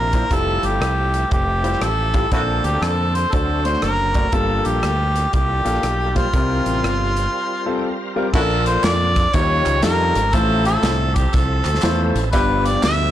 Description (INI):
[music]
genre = uptempo gospel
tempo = 120 BPM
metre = 4/4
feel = swing 65% on 8ths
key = F major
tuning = A4 = 440 Hz
[part]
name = warm harmonica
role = melody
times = 0.0-13.1 s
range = E4 to E5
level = -21 LUFS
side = equal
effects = tape echo
[part]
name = clear concert grand piano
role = accompaniment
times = 0.0-13.1 s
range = G2 to D5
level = -23 LUFS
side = left 3 dB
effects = none
[part]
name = bright tonewheel organ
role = sustained chords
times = 0.0-13.1 s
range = D3 to A5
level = -30 LUFS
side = right 2 dB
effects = slow rotary speaker, overdrive, chorus vibrato
[part]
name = modern bright fingered electric bass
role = bass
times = 0.0-13.1 s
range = F1 to F2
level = -21 LUFS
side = equal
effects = tube saturation
[part]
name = modern studio drum kit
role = drums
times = 0.1-13.0 s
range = crash cymbal, hi-hat, kick drum, rim click, snare drum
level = -23 LUFS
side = equal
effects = soft clipping on snare
[part]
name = tambourine and handclaps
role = percussion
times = 8.3-13.0 s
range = none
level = -33 LUFS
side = right 1 dB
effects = none
[sound]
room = light reverb, small room ambience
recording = blown-out, overdriven recording, overdrive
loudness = -16 LUFS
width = side -12 dB against mid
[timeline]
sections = 0.0-8.3 A section; 8.3-13.1 B section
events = break 7.3-8.3; tonewheel organ fill 7.3-8.3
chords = 0.3 Fmaj9; 2.3 Bbmaj9; 3.3 D7; 4.3 Gm9; 6.3 C7sus4; 8.3 Bbmaj7; 9.3 Eb9; 10.3 Fmaj7/A; 12.3 G7